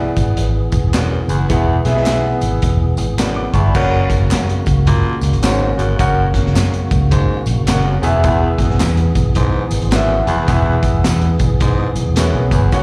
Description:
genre	uptempo 1960s-style soul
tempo	107 BPM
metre	4/4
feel	swing 62% on 8ths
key	unclear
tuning	A4 = 441 Hz
part	clear concert grand piano	accompaniment	0.0-12.8 s	E3 to D6	-22 LUFS	equal	slapback echo
part	tonewheel organ	sustained chords	0.0-12.8 s	C#3 to G#4	-27 LUFS	equal	slow rotary speaker
part	vintage muted fingered electric bass	bass	0.0-12.8 s	E1 to F#2	-19 LUFS	equal	none
part	crunchy breakbeat drum kit	drums	0.2-12.8 s	crash cymbal, hi-hat, kick drum, snare drum	-20 LUFS	equal	none
part	tambourine and handclaps	percussion	0.2-12.8 s	none	-34 LUFS	equal	none
part	raspy baritone saxophone	riff	0.9-12.8 s	E2 to A#2	-25 LUFS	equal	slapback echo
room	little or no reverb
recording	live gig heard through the venue's PA, recital hall reverb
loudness	-15 LUFS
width	mono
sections	0.0-3.7 A section; 3.7-12.8 B section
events	none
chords	0.0 E; 3.7 F#; 8.0 E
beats	0.37 0.93 | 1.50 2.06 2.62 3.18 | 3.75 4.31 4.87 5.43 | 5.99 6.55 7.11 7.68 | 8.24 8.80 9.36 9.92 | 10.48 11.04 11.61 12.17 | 12.73

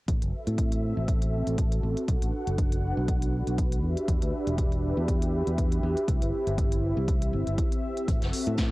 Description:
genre	deep house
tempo	120 BPM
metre	4/4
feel	swing 55% on 16ths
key	A dorian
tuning	A4 = 442 Hz
part	warm analog pad	sustained chords	0.1-8.7 s	C4 to F#5	-31 LUFS	equal	chorus, sidechain pumping, cassette tape
part	fingered electric bass	bass	0.1-8.7 s	E1 to A2	-29 LUFS	equal	sidechain pumping, low-pass filter
part	deep house drum kit	drums	0.1-8.7 s	hi-hat, snare drum	-38 LUFS	equal	none
part	electronic kick drum	drums	0.1-8.7 s	none	-27 LUFS	equal	none
part	jazz brush drum kit	drums	8.1-8.7 s	hi-hat, snare drum	-40 LUFS	left 1 dB	high-pass filter on hats, high-pass filter on snare, high-pass filter on room
room	light reverb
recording	home recording on cassette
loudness	-25 LUFS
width	side -19 dB against mid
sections	0.1-8.7 A section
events	none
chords	0.1 Am69; 2.1 Bm7; 3.8 Em9; 6.1 Cmaj7; 8.1 Am69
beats	| 0.08 0.58 1.08 1.58 | 2.08 2.58 3.08 3.58 | 4.08 4.58 5.08 5.58 | 6.08 6.58 7.08 7.58 | 8.08 8.58

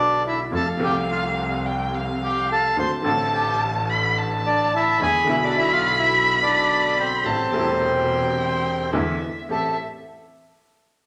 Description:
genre	tango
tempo	107 BPM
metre	4/4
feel	rubato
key	A minor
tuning	A4 = 441 Hz
part	bandoneon	melody	0.0-9.8 s	C4 to C6	-24 LUFS	equal	none
part	clear upright piano	accompaniment	0.0-9.7 s	E1 to G4	-30 LUFS	equal	none
part	clear double bass	bass	0.0-9.7 s	E1 to F2	-32 LUFS	equal	none
part	warm violin	second line	0.5-9.8 s	E5 to B5	-26 LUFS	equal	none
room	wet large studio reverb, RT60 1.4 s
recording	none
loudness	-21 LUFS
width	mono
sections	0.0-9.5 A section; 9.5-11.1 B section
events	none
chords	0.0 E7; 0.5 F; 2.8 Dm7; 5.0 E7; 7.2 Am7; 8.9 E7; 9.5 Am7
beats	| 0.52 1.08 1.65 2.21 | 2.77 3.33 3.89 4.45 | 5.01 5.57 6.13 6.69 | 7.25 7.81 8.37 8.94 | 9.50

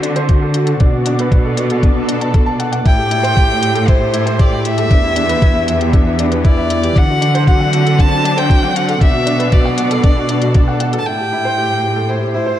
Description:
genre	piano and strings electronica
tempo	117 BPM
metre	4/4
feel	straight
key	unclear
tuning	A4 = 440 Hz
part	lush unison pad	sustained chords	0.0-12.6 s	A2 to D5	-22 LUFS	equal	chorus, shimmer reverb
part	felt-muted upright piano	riff	0.0-12.6 s	D4 to A5	-19 LUFS	left 1 dB	low-pass filter, digital delay, shimmer reverb
part	rich studio cello section	bass	0.0-12.6 s	E2 to D3	-18 LUFS	equal	sidechain pumping
part	electronic hi-hat	drums	0.0-11.0 s	none	-27 LUFS	left 5 dB	overdrive
part	electronic kick drum	drums	0.3-10.7 s	none	-11 LUFS	equal	none
part	rich violin	melody	2.9-12.6 s	C5 to A5	-18 LUFS	equal	shimmer reverb
room	moderate recital hall reverb, RT60 1.6 s, small room ambience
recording	dark, warm production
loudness	-11 LUFS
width	side -12 dB against mid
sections	0.0-11.1 A section; 11.1-12.6 B section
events	none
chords	0.0 D7; 0.8 Bm7; 2.9 Am7; 4.9 Em7; 7.0 D7; 9.0 Bm7; 11.1 Am7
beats	0.29 | 0.81 1.32 1.83 2.35 | 2.86 3.37 3.88 4.40 | 4.91 5.42 5.94 6.45 | 6.96 7.47 7.99 8.50 | 9.01 9.53 10.04 10.55 | 11.06 11.58 12.09

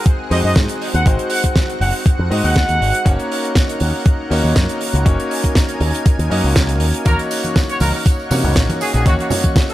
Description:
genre	nu-disco, nu disco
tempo	120 BPM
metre	4/4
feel	straight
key	unclear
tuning	A4 = 440 Hz
part	bright grand piano	accompaniment	0.0-9.7 s	Ab3 to Eb5	-23 LUFS	left 1 dB	sidechain pumping, digital delay
part	lush unison pad	sustained chords	0.0-9.7 s	C4 to Ab5	-26 LUFS	equal	chorus, sidechain pumping
part	damped 70s drum kit	drums	0.1-9.7 s	hi-hat, snare drum	-22 LUFS	right 1 dB	small room ambience
part	electronic kick drum	drums	0.1-9.7 s	none	-14 LUFS	equal	overdrive, small room ambience
part	clear trumpet section	melody	0.3-3.1, 7.1-9.7 s	Gb4 to Gb5	-23 LUFS	right 1 dB	digital delay
part	picked electric bass with an envelope filter	bass	0.3-9.2 s	Gb1 to C3	-17 LUFS	equal	none
part	tambourine and congas	percussion	7.1-9.7 s	none	-24 LUFS	right 1 dB	none
room	small room ambience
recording	none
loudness	-14 LUFS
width	side -15 dB against mid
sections	0.0-9.7 A section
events	none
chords	0.0 Ab7; 3.1 Gb6; 7.1 Ebm7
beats	0.06 0.56 | 1.06 1.56 2.06 2.56 | 3.06 3.56 4.06 4.56 | 5.06 5.56 6.06 6.56 | 7.06 7.56 8.06 8.56 | 9.06 9.56

